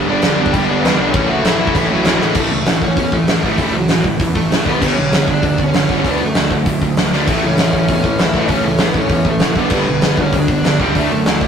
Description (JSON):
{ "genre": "punk rock", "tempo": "196 BPM", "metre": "4/4", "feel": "straight", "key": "A mixolydian", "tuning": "A4 = 440 Hz", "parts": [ { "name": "distorted electric guitar", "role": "riff", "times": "0.0-11.5 s", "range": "G2 to E4", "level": "-22 LUFS", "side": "left 6 dB", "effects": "overdrive" }, { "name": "distorted electric guitar", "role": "riff", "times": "0.0-2.4, 7.3-11.5 s", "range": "G2 to D4", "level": "-23 LUFS", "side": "left 2 dB", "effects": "distortion" }, { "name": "sludgy distorted guitar", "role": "riff", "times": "0.0-11.5 s", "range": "G2 to D4", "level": "-19 LUFS", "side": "right 5 dB", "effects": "overdrive" }, { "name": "fuzz picked electric bass", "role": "bass", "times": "0.0-11.5 s", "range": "F#1 to A2", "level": "-23 LUFS", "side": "left 1 dB", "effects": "overdrive" }, { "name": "smooth overdriven lead guitar", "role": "melody", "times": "0.1-11.5 s", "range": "F#3 to G5", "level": "-20 LUFS", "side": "equal", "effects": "none" }, { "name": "big rock drum kit", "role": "drums", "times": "0.2-11.5 s", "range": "crash cymbal, hi-hat, kick drum, snare drum", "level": "-16 LUFS", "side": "equal", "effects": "none" } ], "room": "light reverb", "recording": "rough rehearsal-room recording, tube saturation", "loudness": "-12 LUFS", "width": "side -7 dB against mid", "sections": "0.0-2.4 A section; 2.4-11.5 B section", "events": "drum fill 2.2, 7.1", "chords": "0.0 G; 1.2 A; 4.7 G5; 6.1 D; 7.3 A; 9.6 G; 11.0 D" }